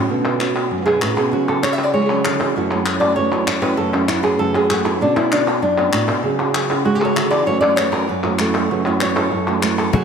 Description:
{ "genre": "flamenco", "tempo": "195 BPM", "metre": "4/4", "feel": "straight", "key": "F# minor", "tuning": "A4 = 440 Hz", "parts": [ { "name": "flamenco guitar", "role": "melody", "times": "0.0-10.0 s", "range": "F#2 to E5", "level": "-18 LUFS", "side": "right 1 dB", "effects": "none" }, { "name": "flamenco guitar", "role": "stabs", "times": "0.0-9.9 s", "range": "F#2 to G#4", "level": "-22 LUFS", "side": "right 3 dB", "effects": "ping-pong delay" }, { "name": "palmas hand claps", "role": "percussion", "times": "0.2-9.9 s", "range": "none", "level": "-22 LUFS", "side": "left 3 dB", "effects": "none" }, { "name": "cajon", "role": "percussion", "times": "9.9-10.0 s", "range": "none", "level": "-22 LUFS", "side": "left 6 dB", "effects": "none" } ], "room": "wet lush hall reverb, RT60 1.9 s, studio reverb", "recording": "dreamy mix soaked in reverb", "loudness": "-15 LUFS", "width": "side -6 dB against mid", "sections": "0.1-9.9 A section", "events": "nylon-string guitar solo 0.1-9.9", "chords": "0.1 Bmadd9; 1.3 C#sus4; 2.6 F#m7; 5.0 Bmadd9; 6.2 C#sus4; 7.5 F#m7" }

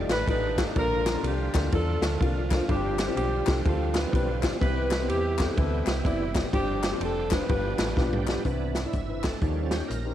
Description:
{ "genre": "uptempo gospel", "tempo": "125 BPM", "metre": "4/4", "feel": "swing 63% on 8ths", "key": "C major", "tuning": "A4 = 439 Hz", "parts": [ { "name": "warm upright piano", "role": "accompaniment", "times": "0.0-10.1 s", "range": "G2 to F5", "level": "-32 LUFS", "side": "left 8 dB", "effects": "cassette tape" }, { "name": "bright tonewheel organ", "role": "sustained chords", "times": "0.0-10.1 s", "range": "C3 to D5", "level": "-34 LUFS", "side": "right 9 dB", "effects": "slow rotary speaker, overdrive, chorus vibrato, cassette tape" }, { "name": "slap-like FM bass", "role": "bass", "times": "0.0-10.1 s", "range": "F1 to E2", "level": "-30 LUFS", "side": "equal", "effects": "none" }, { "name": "warm saxophone section", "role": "melody", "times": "0.1-8.3 s", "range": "B3 to B4", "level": "-30 LUFS", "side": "equal", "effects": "none" }, { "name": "swinging big-band drum kit", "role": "drums", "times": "0.1-10.0 s", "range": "hi-hat, kick drum, ride cymbal, snare drum, toms", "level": "-28 LUFS", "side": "equal", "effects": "cassette tape" }, { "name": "group handclap", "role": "percussion", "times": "0.1-9.8 s", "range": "none", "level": "-39 LUFS", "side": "left 11 dB", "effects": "none" } ], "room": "light reverb, small room ambience", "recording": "home recording on cassette", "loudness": "-24 LUFS", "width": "side -11 dB against mid", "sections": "0.0-8.5 A section; 8.5-10.1 B section", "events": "drum fill 8.0-8.5; tonewheel organ solo 8.5-10.1", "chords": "0.0 F13; 0.8 Bbmaj7; 2.7 G7sus4; 4.6 Cmaj7; 6.5 G7sus4; 7.5 G7; 8.5 Cmaj9; 9.4 Eb7" }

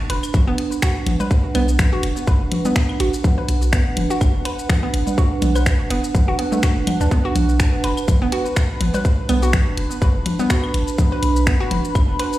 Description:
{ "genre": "minimal techno", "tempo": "124 BPM", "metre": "4/4", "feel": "swing 56% on 16ths", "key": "B minor", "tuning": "A4 = 441 Hz", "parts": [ { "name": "punchy sub bass", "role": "bass", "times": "0.0-12.2 s", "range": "F#1 to D2", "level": "-20 LUFS", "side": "equal", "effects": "sidechain pumping" }, { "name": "pulsing gated texture", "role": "texture", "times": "0.0-12.4 s", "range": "B4", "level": "-34 LUFS", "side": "equal", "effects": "chorus, built-in reverb, sidechain pumping" }, { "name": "warbly tape-like pad", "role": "texture", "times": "0.1-12.4 s", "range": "D4 to B5", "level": "-25 LUFS", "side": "right 4 dB", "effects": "chorus, built-in reverb, sidechain pumping" }, { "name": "hollow square pluck", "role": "riff", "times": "0.1-12.3 s", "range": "A3 to B4", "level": "-25 LUFS", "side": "equal", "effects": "chorus, phaser, sidechain pumping, digital delay" }, { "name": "garage drum kit", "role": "drums", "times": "0.1-12.4 s", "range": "finger snaps, hi-hat, shaker", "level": "-27 LUFS", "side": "left 1 dB", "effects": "none" }, { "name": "electronic claves, toms and congas", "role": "percussion", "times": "0.2-12.1 s", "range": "none", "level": "-26 LUFS", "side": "left 2 dB", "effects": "dub echo" }, { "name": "electronic kick drum", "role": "drums", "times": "0.3-12.1 s", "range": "none", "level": "-17 LUFS", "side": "equal", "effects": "none" } ], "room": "moderate studio ambience, RT60 0.5 s", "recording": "played on a big sound system in a bare room, stone room reverb", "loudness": "-16 LUFS", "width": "side -15 dB against mid", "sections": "0.0-12.4 A section", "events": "none", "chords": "0.0 Bm" }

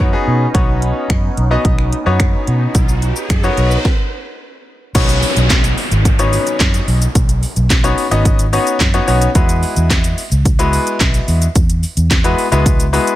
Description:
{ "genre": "dance-pop", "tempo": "109 BPM", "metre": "4/4", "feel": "straight", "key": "unclear", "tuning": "A4 = 439 Hz", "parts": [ { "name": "bright grand piano", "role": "accompaniment", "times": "0.0-13.2 s", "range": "G#3 to D#5", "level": "-18 LUFS", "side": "left 2 dB", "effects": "sidechain pumping" }, { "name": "filtered supersaw swell", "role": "sustained chords", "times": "0.0-3.8 s", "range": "B3 to D#4", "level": "-24 LUFS", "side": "right 2 dB", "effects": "sidechain pumping" }, { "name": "vintage muted fingered electric bass", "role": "bass", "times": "0.0-13.0 s", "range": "G#1 to B2", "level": "-16 LUFS", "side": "equal", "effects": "sidechain pumping" }, { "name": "house drum kit", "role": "drums", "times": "0.0-13.2 s", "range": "crash cymbal, finger snaps, handclaps, hi-hat, kick drum, shaker, snare drum", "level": "-15 LUFS", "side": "equal", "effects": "none" }, { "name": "riser and downlifter", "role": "sound effects", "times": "2.0-9.4 s", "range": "none", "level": "-24 LUFS", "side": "right 1 dB", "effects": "none" } ], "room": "digital ambience", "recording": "none", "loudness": "-12 LUFS", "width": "side -14 dB against mid", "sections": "0.0-5.0 A section; 5.0-13.2 B section", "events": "riser 2.0-5.0; stop 3.9-5.0", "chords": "0.0 Badd9; 9.4 Eadd9" }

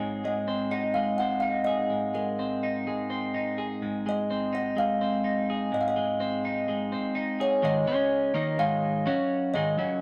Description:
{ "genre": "rock", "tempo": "126 BPM", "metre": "4/4", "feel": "straight", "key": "Ab mixolydian", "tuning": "A4 = 439 Hz", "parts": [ { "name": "twelve-string electric guitar", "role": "riff", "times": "0.0-10.0 s", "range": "Gb2 to Ab4", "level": "-30 LUFS", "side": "equal", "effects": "none" }, { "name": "kalimba", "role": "melody", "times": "0.3-10.0 s", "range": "Bb4 to Gb5", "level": "-31 LUFS", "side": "equal", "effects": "none" } ], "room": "wet studio reverb, RT60 0.6 s", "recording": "rough rehearsal-room recording", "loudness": "-28 LUFS", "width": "mono", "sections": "0.0-7.6 A section; 7.6-10.0 B section", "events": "none", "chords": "0.0 Ab; 7.6 Ab5; 7.9 Db5; 8.4 Ab5; 9.1 Gb5; 9.5 Ab5" }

